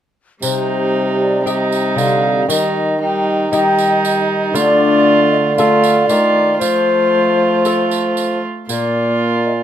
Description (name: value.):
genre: classical, renaissance-style consort dance.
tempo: 116 BPM.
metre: 4/4.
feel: straight.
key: C dorian.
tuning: A4 = 440 Hz.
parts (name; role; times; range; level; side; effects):
baroque flute; melody; 0.4-9.5 s; C5 to G5; -18 LUFS; left 2 dB; none.
warm violin; second line; 0.4-9.6 s; Eb4 to F4; -19 LUFS; right 5 dB; none.
lute; accompaniment; 0.4-9.6 s; Bb2 to Eb5; -22 LUFS; left 5 dB; none.
warm viola; accompaniment; 0.4-9.6 s; G3 to Bb3; -21 LUFS; equal; none.
mellow bassoon; bass; 0.4-9.6 s; Bb2 to F3; -18 LUFS; right 1 dB; none.
tambourine; percussion; 0.4-8.9 s; none; -26 LUFS; right 7 dB; none.
room: moderate stone room reverb, RT60 0.9 s.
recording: minimal, uncompressed stereo recording.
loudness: -12 LUFS.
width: side -10 dB against mid.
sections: 0.4-9.6 A section.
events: none.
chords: 0.4 Cm; 2.5 Eb; 4.6 Dm; 6.6 F; 8.7 Bb.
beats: | 0.43 0.94 1.46 1.98 | 2.49 3.01 3.53 4.04 | 4.56 5.07 5.58 6.10 | 6.62 7.14 7.66 8.18 | 8.69 9.21.